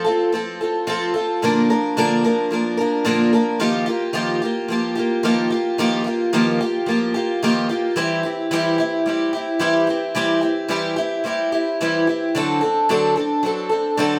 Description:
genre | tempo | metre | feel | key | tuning
rock | 110 BPM | 4/4 | straight | unclear | A4 = 440 Hz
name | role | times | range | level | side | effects
picked twelve-string acoustic guitar | solo | 0.0-14.2 s | Bb2 to Bb4 | -20 LUFS | equal | none
room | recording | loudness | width
moderate stone room reverb, RT60 1.1 s | band playing live in one room | -20 LUFS | mono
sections
0.0-3.6 A section; 3.6-14.2 B section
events
none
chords
0.0 F; 1.4 Bb; 3.6 Ebadd9; 8.0 C/E; 12.3 D7

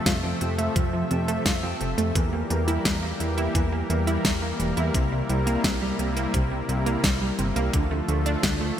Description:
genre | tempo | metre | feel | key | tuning
synthwave | 86 BPM | 4/4 | straight | unclear | A4 = 440 Hz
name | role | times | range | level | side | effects
soft supersaw | sustained chords | 0.0-8.8 s | C3 to E5 | -29 LUFS | left 1 dB | sidechain pumping
wide unison pluck | arpeggios | 0.1-8.7 s | C3 to E4 | -30 LUFS | right 3 dB | digital delay
mellow electric guitar | riff | 0.1-8.7 s | C3 to F4 | -33 LUFS | right 2 dB | wide subtle chorus, digital delay
fat analog bass | bass | 0.1-8.7 s | E1 to F2 | -28 LUFS | equal | tube saturation
electronic kick drum | drums | 0.1-8.6 s | none | -27 LUFS | equal | none
pop drum kit | drums | 0.1-8.6 s | hi-hat, snare drum | -28 LUFS | left 1 dB | none
room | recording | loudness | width
moderate lush hall reverb, RT60 2.7 s | bright 1980s-style digital production | -22 LUFS | side -10 dB against mid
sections
0.0-8.8 A section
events
none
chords
0.0 Fmaj7; 2.2 Edim; 4.9 C7; 7.7 Dm

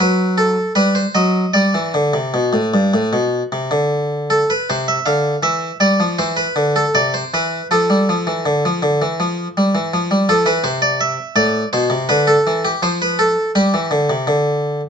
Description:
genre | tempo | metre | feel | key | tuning
classical, baroque-style suite movement for harpsichord | 76-84 BPM | 4/4 | rubato | C major | A4 = 440 Hz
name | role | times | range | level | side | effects
harpsichord | solo | 0.0-14.9 s | G2 to F5 | -14 LUFS | equal | none
room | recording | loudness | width
light reverb | dark, warm production, nothing above 7.9 kHz | -14 LUFS | side -7 dB against mid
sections
0.0-4.7 A section; 4.7-14.9 B section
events
none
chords
0.0 B7b9b13/F#; 1.6 G (rootless); 4.7 Cmaj9; 7.7 Dm; 9.2 Emadd11; 10.6 Amadd11; 12.1 Dm; 13.5 G5

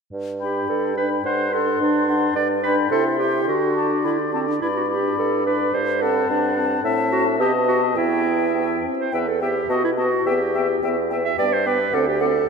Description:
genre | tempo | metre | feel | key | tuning
quick classical-period movement for wind quintet | 107 BPM | 2/4 | rubato | G major, E minor from 6.8 s | A4 = 445 Hz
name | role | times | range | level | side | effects
dark bassoon | bass | 0.1-12.4 s | D2 to D3 | -25 LUFS | right 2 dB | none
hollow concert flute | melody | 0.4-12.3 s | F#5 to C6 | -27 LUFS | left 6 dB | none
warm oboe | second line | 0.4-12.3 s | D5 to G5 | -28 LUFS | left 4 dB | none
clear clarinet | accompaniment | 0.4-12.5 s | C4 to E5 | -22 LUFS | right 3 dB | none
mellow French horn | accompaniment | 0.4-12.3 s | B3 to E4 | -27 LUFS | left 3 dB | none
room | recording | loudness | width
wet cathedral reverb, RT60 5.3 s | in a vast, echoing space | -18 LUFS | side -5 dB against mid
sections
0.1-9.1 A section; 9.1-12.5 B section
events
none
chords
0.1 G; 1.3 D7/G; 2.4 G; 2.9 C; 3.5 D; 4.6 G; 5.7 D7/G; 6.8 F#m7b5/A; 7.4 B7; 8.0 Em; 9.7 B; 10.3 Em; 11.4 G; 11.9 D7(no3)

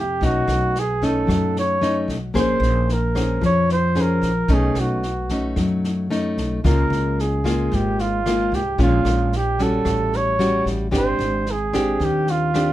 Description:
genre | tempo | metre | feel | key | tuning
bossa nova | 112 BPM | 4/4 | straight | unclear | A4 = 440 Hz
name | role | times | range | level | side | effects
mellow flugelhorn | melody | 0.0-12.7 s | F4 to Db5 | -22 LUFS | right 2 dB | none
nylon-string guitar | accompaniment | 0.0-12.7 s | Ab2 to C5 | -22 LUFS | left 2 dB | none
upright bass | bass | 0.0-12.7 s | Ab1 to F#2 | -24 LUFS | equal | none
open jazz drum kit | drums | 0.2-12.7 s | kick drum, rim click, snare drum | -29 LUFS | equal | none
room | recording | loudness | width
light reverb | band playing live in one room | -18 LUFS | side -14 dB against mid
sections
0.0-12.7 A section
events
none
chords
0.2 B9; 2.4 Bbm9; 4.5 B9; 6.6 Db6; 8.8 Bbm7; 9.9 A6; 10.9 Abmaj7#11

